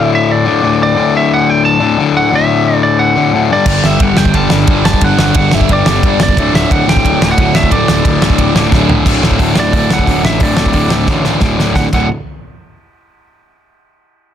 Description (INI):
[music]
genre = punk rock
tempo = 178 BPM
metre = 4/4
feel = straight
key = D major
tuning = A4 = 440 Hz
[part]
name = lightly driven lead guitar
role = melody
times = 0.0-12.1 s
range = D5 to A5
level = -15 LUFS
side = right 3 dB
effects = none
[part]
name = crunchy overdriven guitar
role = riff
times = 0.0-12.1 s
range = D2 to G3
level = -13 LUFS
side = left 8 dB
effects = none
[part]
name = sludgy distorted guitar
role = riff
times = 3.7-12.1 s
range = D2 to G3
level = -16 LUFS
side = right 12 dB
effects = overdrive
[part]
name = fuzz picked electric bass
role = bass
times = 3.7-12.1 s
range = D1 to A1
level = -17 LUFS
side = equal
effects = overdrive
[part]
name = loose indie drum kit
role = drums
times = 3.7-12.0 s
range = crash cymbal, hi-hat, kick drum, ride cymbal, snare drum, toms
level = -13 LUFS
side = equal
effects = none
[sound]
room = little or no reverb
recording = dense, heavily limited modern master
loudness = -9 LUFS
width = side -9 dB against mid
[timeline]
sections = 0.0-9.1 A section; 9.1-11.8 B section; 11.8-13.1 C section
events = drum fill 8.7-9.1, 11.1-11.8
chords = 0.0 D; 3.5 G5; 6.4 D5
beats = 0.30 0.64 | 0.97 1.31 1.65 1.99 | 2.32 2.66 3.00 3.33 | 3.67 4.00 4.34 4.68 | 5.01 5.35 5.69 6.02 | 6.36 6.70 7.03 7.37 | 7.71 8.04 8.38 8.72 | 9.05 9.39 9.73 10.07 | 10.41 10.74 11.08 11.42 | 11.76